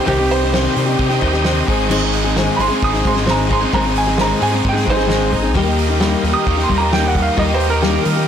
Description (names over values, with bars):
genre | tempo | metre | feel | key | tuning
folk rock and heartland rock | 132 BPM | 4/4 | straight | unclear | A4 = 439 Hz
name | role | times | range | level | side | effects
bright upright piano | second line | 0.0-8.3 s | Eb4 to Eb6 | -20 LUFS | right 5 dB | none
picked steel-string acoustic guitar | accompaniment | 0.0-8.3 s | Ab2 to Ab4 | -19 LUFS | left 5 dB | none
bright tonewheel organ | sustained chords | 0.0-8.3 s | Eb4 to Eb5 | -26 LUFS | right 1 dB | slow rotary speaker, overdrive, chorus vibrato
biting overdriven guitar | riff | 0.0-8.3 s | Ab2 to Ab4 | -21 LUFS | right 1 dB | none
fingered electric bass | bass | 0.1-8.3 s | Ab1 to Eb3 | -20 LUFS | equal | none
natural country drum kit | drums | 0.1-8.2 s | crash cymbal, hi-hat, kick drum, snare drum | -22 LUFS | right 1 dB | none
room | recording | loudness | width
light reverb | blown-out, overdriven recording, overdrive | -14 LUFS | side -8 dB against mid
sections
0.0-8.3 A section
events
upright piano solo 0.0-8.3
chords
0.0 Cm; 1.7 Ab; 5.5 Eb